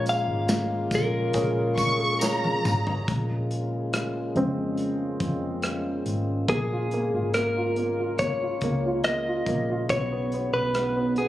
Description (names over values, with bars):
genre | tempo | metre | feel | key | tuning
pop ballad | 70 BPM | 4/4 | straight | Bb minor, Bb phrygian from 6.5 s | A4 = 440 Hz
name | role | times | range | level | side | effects
direct-recorded clean electric guitar | melody | 0.0-11.3 s | Ab4 to F5 | -27 LUFS | left 1 dB | none
warm upright piano | accompaniment | 0.0-11.3 s | Db3 to Db5 | -29 LUFS | right 1 dB | none
warm brass ensemble | sustained chords | 0.0-11.3 s | Db3 to F4 | -32 LUFS | left 1 dB | none
vintage muted fingered electric bass | bass | 0.0-11.3 s | Ab1 to F2 | -31 LUFS | equal | none
modern studio drum kit | drums | 0.1-11.3 s | hi-hat, kick drum, rim click, snare drum, toms | -30 LUFS | equal | none
tambourine | percussion | 0.1-2.9 s | none | -37 LUFS | right 1 dB | none
rich studio violin section | second line | 1.8-3.1 s | Bb5 to Db6 | -26 LUFS | equal | none
room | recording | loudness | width
light reverb, small room reverb | recorded on a phone in the room, club reverb, compression | -23 LUFS | side -14 dB against mid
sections
0.0-3.1 A section; 3.1-6.5 B section; 6.5-11.3 C section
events
drum fill 2.2-3.1; upright piano solo 3.1-6.5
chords
0.0 Bbm7; 9.9 Badd9